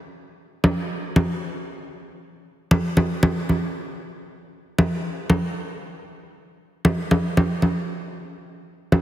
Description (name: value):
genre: house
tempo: 116 BPM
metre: 4/4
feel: swing 60% on 16ths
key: none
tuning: none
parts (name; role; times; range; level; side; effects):
- congas; percussion; 0.6-9.0 s; none; -20 LUFS; equal; none
room: moderate lush hall reverb, RT60 2.6 s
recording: heavily compressed radio sound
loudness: -20 LUFS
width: side -13 dB against mid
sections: 0.0-9.0 A section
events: none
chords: none